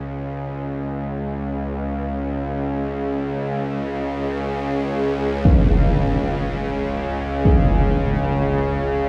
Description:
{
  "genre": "dark ambient drone",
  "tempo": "free time",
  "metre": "none",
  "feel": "none",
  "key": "unclear",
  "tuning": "A4 = 440 Hz",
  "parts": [
    { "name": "bowed-like drone", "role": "drone", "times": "0.0-9.1 s", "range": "C#2 to C#3", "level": "-24 LUFS", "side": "equal", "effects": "built-in reverb" },
    { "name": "impact", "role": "percussion", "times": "5.5-7.7 s", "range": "none", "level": "-21 LUFS", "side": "equal", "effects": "low-pass filter on sfx" }
  ],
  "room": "wet echo chamber reverb, RT60 2.2 s",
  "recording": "none",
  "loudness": "-22 LUFS",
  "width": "mono",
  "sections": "0.0-9.1 A section",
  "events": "none",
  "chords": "none"
}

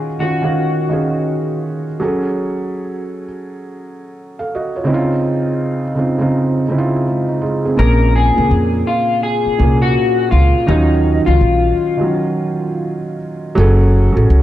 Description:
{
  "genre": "lo-fi hip hop",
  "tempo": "83 BPM",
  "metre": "4/4",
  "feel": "swing 63% on 16ths",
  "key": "unclear",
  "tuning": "A4 = 440 Hz",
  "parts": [
    { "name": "electric guitar through a small old amp", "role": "melody", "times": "0.0-1.6, 7.8-13.2 s", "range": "Eb4 to Bb4", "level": "-18 LUFS", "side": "left 4 dB", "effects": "lush chorus, low-pass filter, analog delay" },
    { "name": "felt-muted upright piano", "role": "accompaniment", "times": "0.0-14.4 s", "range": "Bb2 to F5", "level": "-17 LUFS", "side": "right 2 dB", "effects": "cassette tape, low-pass filter" },
    { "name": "upright bass", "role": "bass", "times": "7.8-14.4 s", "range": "Gb1 to F2", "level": "-13 LUFS", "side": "equal", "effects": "none" }
  ],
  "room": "light reverb",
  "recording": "dark, warm production",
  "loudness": "-13 LUFS",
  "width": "side -13 dB against mid",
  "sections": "0.0-7.8 A section; 7.8-14.4 B section",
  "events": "none",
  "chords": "0.0 Ebm9; 2.0 Gbmadd9; 4.9 Dbmaj9; 7.8 Bbm7; 10.7 Ebm9; 13.6 Gbmadd9"
}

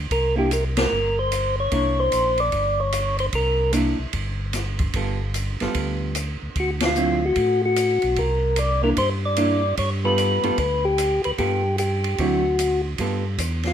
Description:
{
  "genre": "soul jazz organ trio",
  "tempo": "149 BPM",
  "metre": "4/4",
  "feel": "swing 64% on 8ths",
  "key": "unclear",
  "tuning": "A4 = 438 Hz",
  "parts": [
    { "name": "tonewheel organ", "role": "bass", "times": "0.0-13.7 s", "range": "G1 to A2", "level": "-25 LUFS", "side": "equal", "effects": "overdrive, slow rotary speaker" },
    { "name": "percussive tonewheel organ", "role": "melody", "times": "0.1-3.7, 6.6-13.7 s", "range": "F4 to D5", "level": "-21 LUFS", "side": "left 1 dB", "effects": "slow rotary speaker" },
    { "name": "open jazz drum kit", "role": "drums", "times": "0.1-13.7 s", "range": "hi-hat, kick drum, ride cymbal, snare drum", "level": "-29 LUFS", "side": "right 1 dB", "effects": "none" },
    { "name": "archtop guitar, miked and amplified", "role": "accompaniment", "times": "0.4-13.2 s", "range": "D3 to A4", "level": "-26 LUFS", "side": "right 2 dB", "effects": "none" }
  ],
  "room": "moderate large studio reverb, RT60 1.0 s",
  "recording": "minimal, uncompressed stereo recording",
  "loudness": "-20 LUFS",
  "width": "side -9 dB against mid",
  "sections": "0.0-13.0 A section",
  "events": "band accent 0.7, 6.8",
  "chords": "0.1 C9; 5.0 G9; 6.6 D9; 8.2 C9; 9.8 G9; 12.2 D9; 13.0 G9"
}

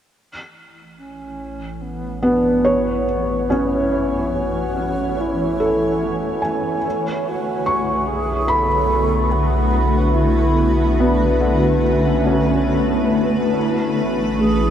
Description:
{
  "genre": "ambient",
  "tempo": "71 BPM",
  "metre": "4/4",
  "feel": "straight",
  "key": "A major",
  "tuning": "A4 = 439 Hz",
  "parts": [
    { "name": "deep rumbling drone", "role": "bass", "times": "1.3-14.7 s", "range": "A1 to B1", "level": "-24 LUFS", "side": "equal", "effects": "built-in reverb" },
    { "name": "overtone-sweeping drone", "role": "drone", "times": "1.3-14.7 s", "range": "A3 to E4", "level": "-30 LUFS", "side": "equal", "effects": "chorus, built-in reverb, phaser" },
    { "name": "granular cloud pad", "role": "sustained chords", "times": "1.3-14.7 s", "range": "D3 to G#5", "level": "-22 LUFS", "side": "left 1 dB", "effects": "built-in reverb, wide subtle chorus" },
    { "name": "mellow alto flute", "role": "melody", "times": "1.0-14.7 s", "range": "B3 to A4", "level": "-26 LUFS", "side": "right 1 dB", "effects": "diffuse ambient delay" },
    { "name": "felt-muted upright piano", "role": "arpeggios", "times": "2.2-14.7 s", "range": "D3 to C#6", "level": "-20 LUFS", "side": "equal", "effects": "diffuse ambient delay" }
  ],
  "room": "wet huge ambient reverb, RT60 8.9 s",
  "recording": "dreamy mix soaked in reverb",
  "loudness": "-16 LUFS",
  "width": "side -9 dB against mid",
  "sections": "0.1-14.7 A section",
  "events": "fade-in on ambient pad 0.1-14.7; fade-in on synth drone 0.1-14.7; fade-in on alto flute 0.1-14.7",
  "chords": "0.1 Amaj9; 6.9 Bm7; 13.6 Amaj9"
}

